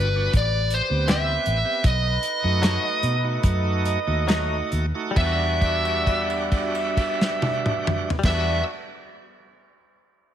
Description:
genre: straight-eighth soul blues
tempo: 66-82 BPM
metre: 4/4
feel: straight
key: E minor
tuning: A4 = 440 Hz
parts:
  - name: smooth overdriven lead guitar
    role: melody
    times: 0.0-8.6 s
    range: B4 to E5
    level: -25 LUFS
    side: right 1 dB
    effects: none
  - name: bright tonewheel organ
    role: accompaniment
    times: 0.0-8.6 s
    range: G3 to G4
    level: -30 LUFS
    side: right 4 dB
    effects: slow rotary speaker, overdrive
  - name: mellow horn section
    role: sustained chords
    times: 0.0-8.6 s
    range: G3 to D5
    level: -36 LUFS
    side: left 2 dB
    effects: none
  - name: vintage muted fingered electric bass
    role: bass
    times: 0.0-8.6 s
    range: G1 to B2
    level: -24 LUFS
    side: equal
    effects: none
  - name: warm soul drum kit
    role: drums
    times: 0.3-8.5 s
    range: crash cymbal, hi-hat, kick drum, snare drum, toms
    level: -25 LUFS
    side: equal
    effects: none
  - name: direct-recorded clean electric guitar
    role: stabs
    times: 1.1-8.7 s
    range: E3 to G4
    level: -32 LUFS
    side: left 6 dB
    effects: none
room: light reverb, studio ambience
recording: none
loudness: -20 LUFS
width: side -10 dB against mid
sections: 0.0-5.2 A section; 5.2-8.8 B section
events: slowing down 0.0-5.2; held note 5.2-8.2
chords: 0.3 Am9; 1.8 B7; 5.2 Em9

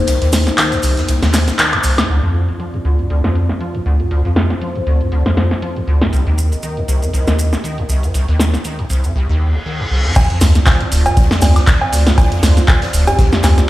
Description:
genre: acid house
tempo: 119 BPM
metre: 4/4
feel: swing 56% on 16ths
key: D phrygian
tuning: A4 = 440 Hz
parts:
  - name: dark analog pad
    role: sustained chords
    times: 0.0-13.7 s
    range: Bb3 to Eb5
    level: -24 LUFS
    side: equal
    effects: chorus, sidechain pumping
  - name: liquid acid bass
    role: riff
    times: 0.0-13.6 s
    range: C2 to F3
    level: -15 LUFS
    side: equal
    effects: tube saturation, ensemble chorus, tape echo
  - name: oversized low-tuned drum kit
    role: drums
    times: 0.1-1.7, 10.2-13.6 s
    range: hi-hat, snare drum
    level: -28 LUFS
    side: left 1 dB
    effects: sidechain pumping on hats, high-pass filter on hats, high-pass filter on snare, high-pass filter on room
  - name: punchy analog drum machine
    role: drums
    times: 0.1-13.7 s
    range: cowbell, crash cymbal, handclaps, hi-hat, snare drum, woodblock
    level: -17 LUFS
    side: equal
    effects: low-pass filter on hats, low-pass filter on snare, low-pass filter on perc, low-pass filter on cymbals
  - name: maracas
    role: percussion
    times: 0.1-2.1, 6.1-13.7 s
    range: none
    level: -28 LUFS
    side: right 2 dB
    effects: none
  - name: reverse cymbal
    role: sound effects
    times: 9.4-10.2 s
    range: none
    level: -25 LUFS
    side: left 1 dB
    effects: none
  - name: electronic kick drum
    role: drums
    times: 10.2-13.3 s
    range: none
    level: -12 LUFS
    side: equal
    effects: none
  - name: warm sub bass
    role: bass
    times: 10.4-13.6 s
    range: D1 to D2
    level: -13 LUFS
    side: equal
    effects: sidechain pumping
  - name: kalimba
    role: melody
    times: 13.1-13.3 s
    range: G4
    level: -22 LUFS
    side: left 1 dB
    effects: tape echo
room: light reverb, studio reverb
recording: played on a big sound system in a bare room, stone room reverb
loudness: -12 LUFS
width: side -16 dB against mid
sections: 0.0-2.1 A section; 2.1-10.2 B section; 10.2-13.7 C section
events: filter sweep on acid bass 0.0-2.1; break 0.1-2.1; band accent 1.6; reverse cymbal 9.4-10.2; drop 10.2-13.7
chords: 0.0 Cm7; 2.1 Dm7; 6.1 Cm7; 10.2 Dm7

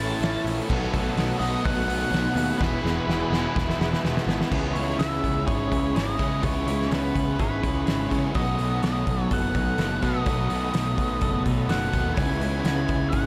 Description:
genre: rock, shoegaze and dream pop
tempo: 126 BPM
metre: 4/4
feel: straight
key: unclear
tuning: A4 = 440 Hz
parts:
  - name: octave-fuzz lead guitar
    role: melody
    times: 0.0-13.3 s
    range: B4 to A5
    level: -34 LUFS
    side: equal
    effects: distortion, tape echo
  - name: string machine, cellos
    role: sustained chords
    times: 0.0-13.3 s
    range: G#4 to E6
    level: -38 LUFS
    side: equal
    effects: ensemble chorus
  - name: direct-recorded clean electric guitar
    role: arpeggios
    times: 0.0-13.3 s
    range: F#3 to A4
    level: -39 LUFS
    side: equal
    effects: none
  - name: biting overdriven guitar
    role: riff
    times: 0.0-4.9 s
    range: E2 to B3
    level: -36 LUFS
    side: equal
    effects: none
  - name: overdriven electric guitar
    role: riff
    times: 0.0-13.3 s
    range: E2 to F#4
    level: -33 LUFS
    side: equal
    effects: reverse reverb
  - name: thick fuzz guitar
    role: riff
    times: 0.0-13.3 s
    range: E2 to C#4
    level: -33 LUFS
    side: equal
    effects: distortion, ensemble chorus
  - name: fuzz picked electric bass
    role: bass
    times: 0.0-13.3 s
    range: E1 to C#3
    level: -31 LUFS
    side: equal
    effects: overdrive
  - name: loose indie drum kit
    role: drums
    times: 0.2-13.2 s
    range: crash cymbal, hi-hat, kick drum, snare drum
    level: -30 LUFS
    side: equal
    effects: none
room: moderate plate reverb, RT60 2.3 s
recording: dreamy mix soaked in reverb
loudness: -25 LUFS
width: mono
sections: 0.0-4.5 A section; 4.5-13.3 B section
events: drum fill 2.6-4.5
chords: 0.0 A; 0.7 B7; 2.6 E; 4.5 C#m7; 8.3 B7; 12.2 C#m7

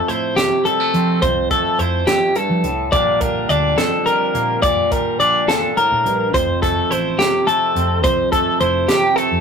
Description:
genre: math rock and midwest emo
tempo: 70 BPM (dotted quarters)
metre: 6/8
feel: straight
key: unclear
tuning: A4 = 440 Hz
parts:
  - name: twangy electric guitar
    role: accompaniment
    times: 0.0-9.4 s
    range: F2 to E4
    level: -22 LUFS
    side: right 5 dB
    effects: none
  - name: twelve-string electric guitar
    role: arpeggios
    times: 0.0-9.4 s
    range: G4 to D5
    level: -16 LUFS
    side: left 2 dB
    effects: none
  - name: hollow-body short-scale fingered electric bass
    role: bass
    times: 0.1-9.4 s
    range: F1 to F3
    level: -23 LUFS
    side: equal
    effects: none
  - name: crisp fusion drum kit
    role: drums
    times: 0.1-9.3 s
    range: hi-hat, kick drum, snare drum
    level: -24 LUFS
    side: equal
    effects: none
room: moderate studio reverb, RT60 0.5 s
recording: rough rehearsal-room recording, warm saturation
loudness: -14 LUFS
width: side -6 dB against mid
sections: 0.0-9.4 A section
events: none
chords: 0.0 Fmaj7; 2.9 Bb6; 6.3 Fmaj7

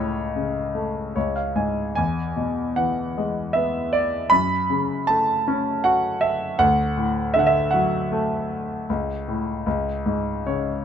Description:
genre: classical, lyrical solo piano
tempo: 78 BPM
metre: 3/4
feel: uneven beats, rubato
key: F# minor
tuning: A4 = 440 Hz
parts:
  - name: clear concert grand piano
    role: solo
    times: 0.0-10.8 s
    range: C#2 to B5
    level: -20 LUFS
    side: equal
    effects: none
room: light reverb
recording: minimal, uncompressed stereo recording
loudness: -20 LUFS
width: side -8 dB against mid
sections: 0.0-10.8 A section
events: grand piano fill 0.7-2.0, 10.1-10.8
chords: 0.0 A/C#; 1.2 C#5; 2.0 E; 4.3 F#m; 6.6 D; 8.9 F#m/C#; 9.7 C#5

